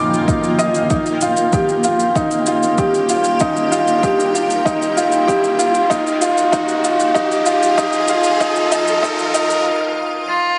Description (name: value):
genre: piano and strings electronica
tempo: 96 BPM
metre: 4/4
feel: straight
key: Eb major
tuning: A4 = 443 Hz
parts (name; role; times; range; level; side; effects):
- granular cloud pad; sustained chords; 0.0-10.6 s; F3 to G5; -26 LUFS; equal; built-in reverb, sidechain pumping
- felt-muted upright piano; riff; 0.0-10.6 s; Eb4 to D6; -18 LUFS; equal; delay
- riser; sound effects; 1.1-9.7 s; none; -28 LUFS; equal; none
- shaker; drums; 0.1-9.6 s; none; -29 LUFS; equal; none
- electronic kick drum; drums; 0.3-9.2 s; none; -24 LUFS; equal; none
- dark cello; melody; 10.3-10.6 s; F4; -17 LUFS; equal; none
room: wet echo chamber reverb, RT60 2.4 s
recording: high-pass filter, nothing above 10.3 kHz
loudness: -16 LUFS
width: mono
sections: 0.0-10.6 A section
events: build-up 0.0-10.6; filter sweep 0.0-10.6; riser 1.1-9.7; break 9.7-10.6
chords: 0.0 Bbsus4/F; 0.9 Ebadd9; 5.9 Bbsus4/F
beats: 0.29 | 0.91 1.54 2.16 2.79 | 3.41 4.04 4.66 5.29 | 5.91 6.54 7.16 7.79 | 8.41 9.04 9.66 10.29